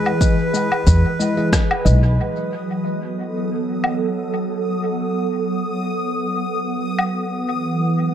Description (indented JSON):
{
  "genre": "ambient dub",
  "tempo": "91 BPM",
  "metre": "4/4",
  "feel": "swing 54% on 16ths",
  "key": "B mixolydian",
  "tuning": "A4 = 440 Hz",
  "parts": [
    { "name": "melodica", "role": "melody", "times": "0.0-1.5 s", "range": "B4", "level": "-28 LUFS", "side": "right 1 dB", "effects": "dub echo" },
    { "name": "soft additive organ-like pad", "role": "sustained chords", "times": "0.0-8.1 s", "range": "E3 to F#5", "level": "-22 LUFS", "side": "right 1 dB", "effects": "ensemble chorus, built-in reverb" },
    { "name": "tine electric piano", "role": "stabs", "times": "0.0-2.0 s", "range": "G#3 to D#5", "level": "-26 LUFS", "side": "left 2 dB", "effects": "phaser, dub echo" },
    { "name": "bubbling stepped-filter texture", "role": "texture", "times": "0.0-8.1 s", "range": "B4 to D#6", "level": "-29 LUFS", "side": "left 1 dB", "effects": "chorus, built-in reverb" },
    { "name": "electronic woodblock, cabasa and rim click", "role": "drums", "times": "0.1-7.1 s", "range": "none", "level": "-25 LUFS", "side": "left 1 dB", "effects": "small room ambience, dub echo" },
    { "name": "electronic kick drum", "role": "drums", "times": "0.2-1.7 s", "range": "none", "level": "-18 LUFS", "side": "equal", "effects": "overdrive, small room ambience" },
    { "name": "upright bass", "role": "bass", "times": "0.9-2.2 s", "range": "B1 to E2", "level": "-13 LUFS", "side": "equal", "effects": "none" }
  ],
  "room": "moderate spring reverb, RT60 2.4 s",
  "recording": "none",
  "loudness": "-18 LUFS",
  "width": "side -10 dB against mid",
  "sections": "0.0-2.2 A section; 2.2-8.1 B section",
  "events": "none",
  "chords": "0.0 Emaj7; 2.2 B7; 7.5 Emaj7",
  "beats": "0.21 0.87 1.53 | 2.19 2.85 3.51 4.17 | 4.83 5.49 6.14 6.80 | 7.46 8.12"
}